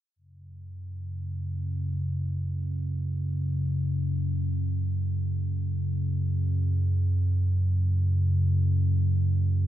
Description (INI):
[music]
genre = ambient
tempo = free time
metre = none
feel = none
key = unclear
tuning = A4 = 438 Hz
[part]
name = deep rumbling drone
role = solo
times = 0.5-9.7 s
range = F#2 to C#3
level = -25 LUFS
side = equal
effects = built-in reverb
[sound]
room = wet huge ambient reverb, RT60 7.4 s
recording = dreamy mix soaked in reverb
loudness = -25 LUFS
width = side -12 dB against mid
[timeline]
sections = 0.2-9.7 A section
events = none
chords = 0.2 F#5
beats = free time